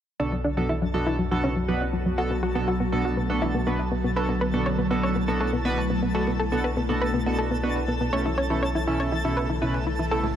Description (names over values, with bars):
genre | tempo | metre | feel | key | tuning
progressive house | 121 BPM | 4/4 | straight | B minor | A4 = 441 Hz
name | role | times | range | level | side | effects
evolving wavetable pad | sustained chords | 1.2-10.4 s | C#3 to A4 | -30 LUFS | equal | phaser, built-in reverb
analog pluck | arpeggios | 0.2-10.3 s | F#3 to C#5 | -27 LUFS | equal | chorus, cassette tape, tape echo
chorused polysynth | stabs | 0.2-10.3 s | B2 to B4 | -28 LUFS | right 2 dB | tape echo
saturated sub bass | bass | 0.2-10.4 s | B1 | -30 LUFS | equal | none
deep house drum kit | drums | 0.2-10.3 s | none | barely audible | none | none
twinkling granular texture | texture | 0.5-10.4 s | A4 to A5 | -36 LUFS | right 1 dB | built-in reverb
room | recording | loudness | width
light reverb, digital ambience | none | -22 LUFS | side -10 dB against mid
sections
0.2-10.4 A section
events
filter sweep on synth arpeggio sound 0.2-10.4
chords
0.2 Bm7; 8.1 A/B